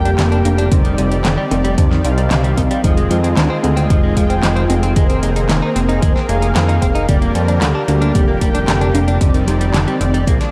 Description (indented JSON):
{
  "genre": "synthwave",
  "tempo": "113 BPM",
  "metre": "4/4",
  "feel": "straight",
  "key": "unclear",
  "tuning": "A4 = 437 Hz",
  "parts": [
    { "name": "soft supersaw", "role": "sustained chords", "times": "0.0-10.5 s", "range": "D3 to D5", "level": "-25 LUFS", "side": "equal", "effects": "sidechain pumping" },
    { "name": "warbly dusty pluck", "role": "arpeggios", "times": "0.0-10.5 s", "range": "D3 to D4", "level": "-25 LUFS", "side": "equal", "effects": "none" },
    { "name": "mellow synth brass", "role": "stabs", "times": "0.0-10.3 s", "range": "Ab3 to G5", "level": "-24 LUFS", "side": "equal", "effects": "chorus, vintage 12-bit sampler grit, tape echo" },
    { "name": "fat analog bass", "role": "bass", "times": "0.0-10.4 s", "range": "F1 to F2", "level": "-19 LUFS", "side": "equal", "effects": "sidechain pumping" },
    { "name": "direct-recorded clean electric guitar", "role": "riff", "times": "0.1-10.5 s", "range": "C3 to Eb4", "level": "-27 LUFS", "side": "equal", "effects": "analog chorus, tape echo" },
    { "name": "pop drum kit", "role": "drums", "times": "0.1-10.5 s", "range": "handclaps, hi-hat, snare drum", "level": "-25 LUFS", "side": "equal", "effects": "none" },
    { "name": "electronic kick drum", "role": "drums", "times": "0.7-10.4 s", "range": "none", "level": "-18 LUFS", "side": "equal", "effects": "none" }
  ],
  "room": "light reverb, digital ambience",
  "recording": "dark, warm production",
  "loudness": "-15 LUFS",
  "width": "mono",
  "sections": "0.0-10.5 A section",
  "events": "none",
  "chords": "0.0 Gm/F; 0.7 Cmadd9/F; 2.8 Fm7; 5.0 Abadd9/F; 7.1 Gm/F; 9.2 Cmadd9/F",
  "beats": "0.18 | 0.72 1.25 1.78 2.31 | 2.84 3.37 3.90 4.43 | 4.96 5.49 6.03 6.56 | 7.09 7.62 8.15 8.68 | 9.21 9.74 10.27"
}